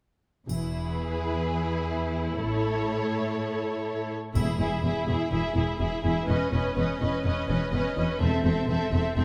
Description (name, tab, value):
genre	cinematic, heroic adventure film score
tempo	125 BPM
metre	4/4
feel	straight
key	E major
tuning	A4 = 440 Hz
part	warm symphonic violin section	melody	0.5-9.2 s	B4 to E5	-38 LUFS	equal	none
part	warm symphonic violin section	second line	0.5-9.2 s	G#4 to B4	-35 LUFS	equal	none
part	rich symphonic viola section	accompaniment	0.5-9.2 s	C4 to E4	-35 LUFS	equal	none
part	rich symphonic cello section	bass	0.5-9.2 s	E2 to A2	-33 LUFS	equal	none
part	rich symphonic double bass section	bass	0.5-9.2 s	E1 to A1	-32 LUFS	equal	none
part	triangle	percussion	0.5-1.4, 4.4-5.3 s	none	-53 LUFS	equal	none
part	timpani	percussion	4.4-5.0, 8.2-8.9 s	E2	-34 LUFS	equal	none
room	moderate recital hall reverb, RT60 1.4 s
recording	none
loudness	-28 LUFS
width	mono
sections	0.5-4.4 A section; 4.4-9.2 B section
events	build-up 4.4-9.2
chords	0.5 E; 2.4 A; 4.4 E; 6.3 Badd9/E; 8.2 Am/E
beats	| 0.50 0.98 1.46 1.94 | 2.42 2.89 3.37 3.86 | 4.36 4.84 5.32 5.81 | 6.29 6.77 7.25 7.74 | 8.21 8.69 9.16